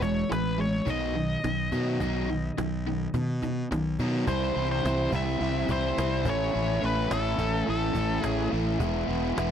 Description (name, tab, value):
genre	classic rock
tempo	106 BPM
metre	4/4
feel	straight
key	unclear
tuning	A4 = 442 Hz
part	nasal lead guitar with a parked wah	melody	0.0-8.5 s	A4 to E5	-32 LUFS	left 2 dB	overdrive, tape echo
part	biting overdriven guitar	riff	0.0-9.5 s	A2 to E4	-28 LUFS	equal	none
part	fuzz fingered electric bass	bass	0.0-9.5 s	E1 to B2	-30 LUFS	equal	overdrive
part	cajon	drums	0.0-9.5 s	none	-34 LUFS	equal	none
room	digital ambience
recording	dry, close 1970s-style studio recording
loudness	-25 LUFS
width	side -8 dB against mid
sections	0.0-4.3 A section; 4.3-9.5 B section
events	none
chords	0.0 E; 0.9 B; 4.3 C; 6.3 A; 8.8 E